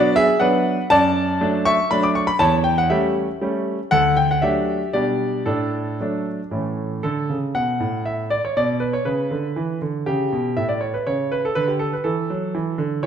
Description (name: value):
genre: classical-period piano sonatina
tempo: 120 BPM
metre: 3/4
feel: rubato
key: D major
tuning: A4 = 439 Hz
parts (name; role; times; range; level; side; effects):
- clear concert grand piano; solo; 0.0-13.1 s; D2 to D6; -18 LUFS; equal; none
room: moderate recital hall reverb, RT60 1.6 s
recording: none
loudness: -18 LUFS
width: side -8 dB against mid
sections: 0.0-7.0 A section; 7.0-13.1 B section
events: none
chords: 0.0 Bm; 0.9 D/F#; 2.4 A7/E; 3.9 D; 4.9 G/B; 5.5 D/A; 6.5 A; 7.0 D; 8.6 Bmadd9; 10.1 A7; 11.6 D